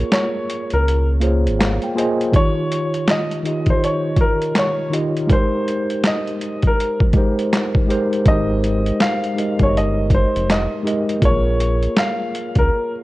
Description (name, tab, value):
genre	lo-fi hip hop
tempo	81 BPM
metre	4/4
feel	swing 62% on 16ths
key	Bb dorian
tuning	A4 = 440 Hz
part	clear upright piano	melody	0.0-12.9 s	Bb4 to F5	-22 LUFS	equal	low-pass filter, tape echo
part	mellow tine electric piano	accompaniment	0.0-13.0 s	Eb3 to Ab5	-21 LUFS	equal	medium stereo tremolo, cassette tape, low-pass filter
part	round analog bass	bass	0.0-1.8, 8.3-12.7 s	F1 to Db2	-19 LUFS	equal	none
part	boom bap sampler-style drum kit	drums	0.1-12.7 s	handclaps, hi-hat, kick drum, snare drum	-18 LUFS	equal	overdrive
room	light reverb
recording	worn, warbling old tape, cassette tape, warbly pitch drift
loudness	-16 LUFS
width	side -18 dB against mid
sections	0.0-13.0 A section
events	break 0.0-2.3, 12.7-13.0; tine electric piano fill 1.2-2.3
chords	0.0 Bbm7; 2.3 Eb7; 5.3 Abmaj9; 8.3 Fm11 (rootless); 11.2 Bbm7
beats	0.11 0.85 1.59 | 2.33 3.08 3.82 4.56 | 5.30 6.04 6.78 7.52 | 8.26 9.00 9.74 10.48 | 11.22 11.96 12.71